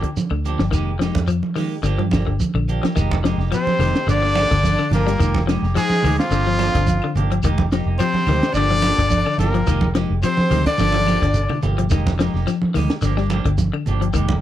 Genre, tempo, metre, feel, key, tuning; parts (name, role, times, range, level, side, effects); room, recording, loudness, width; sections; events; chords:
afrobeat; 107 BPM; 4/4; straight; F dorian; A4 = 440 Hz
clean electric guitar; arpeggios; 0.0-14.4 s; D3 to G3; -24 LUFS; left 7 dB
clean electric guitar; stabs; 0.0-14.3 s; F3 to G4; -28 LUFS; right 6 dB; phaser
compact cocktail drum kit; drums; 0.0-14.4 s; hi-hat, kick drum, snare drum; -24 LUFS; equal
congas; percussion; 0.2-14.4 s; -25 LUFS; right 4 dB
shekere; percussion; 0.2-14.3 s; -27 LUFS; right 2 dB
vintage muted fingered electric bass; bass; 0.3-14.4 s; F1 to G2; -21 LUFS; equal
claves; percussion; 0.3-14.3 s; -38 LUFS; left 16 dB
bright trumpet; melody; 3.5-11.6 s; F4 to D5; -21 LUFS; equal; slapback echo
edgy baritone saxophone; second line; 3.5-11.6 s; F2 to D3; -28 LUFS; left 10 dB
raspy tenor saxophone; second line; 3.5-11.6 s; F3 to D4; -29 LUFS; right 3 dB
studio reverb; dry, close 1970s-style studio recording; -16 LUFS; side -12 dB against mid
0.0-3.0 A section; 3.0-14.4 B section
drum fill 10.8-11.9
0.0 Gm7; 0.7 Fm11; 1.8 Gm7; 3.0 Fm11; 4.1 Gm7; 5.2 Fm11; 6.3 Gm7; 7.4 Fm11; 8.6 Gm7; 9.7 Fm11; 10.8 Gm7; 11.9 Fm11; 13.0 Gm7